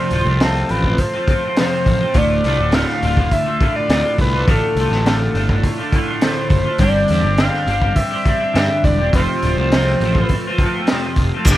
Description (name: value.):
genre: psychedelic rock.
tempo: 103 BPM.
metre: 4/4.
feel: straight.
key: unclear.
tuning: A4 = 444 Hz.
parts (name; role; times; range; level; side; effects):
overdriven synth lead; melody; 0.0-10.8 s; A4 to F5; -21 LUFS; left 1 dB; digital delay.
twelve-string electric guitar; riff; 0.0-11.6 s; D2 to G4; -20 LUFS; equal; flanger, double-tracked left and right.
fuzz picked electric bass; bass; 0.1-11.6 s; D1 to G2; -20 LUFS; equal; overdrive.
crunchy breakbeat drum kit; drums; 0.1-11.6 s; crash cymbal, hi-hat, kick drum, snare drum; -19 LUFS; equal; none.
tube shaker; percussion; 11.5-11.6 s; none; -23 LUFS; right 6 dB; none.
room: light reverb.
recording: none.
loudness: -14 LUFS.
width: side -14 dB against mid.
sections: 0.0-11.5 A section.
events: none.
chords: 0.0 F; 2.2 Dm; 6.8 Gsus4; 9.1 F.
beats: 0.41 0.99 1.57 | 2.16 2.74 3.32 3.90 | 4.48 5.07 5.65 6.23 | 6.81 7.39 7.97 8.55 | 9.14 9.72 10.30 10.88 | 11.46.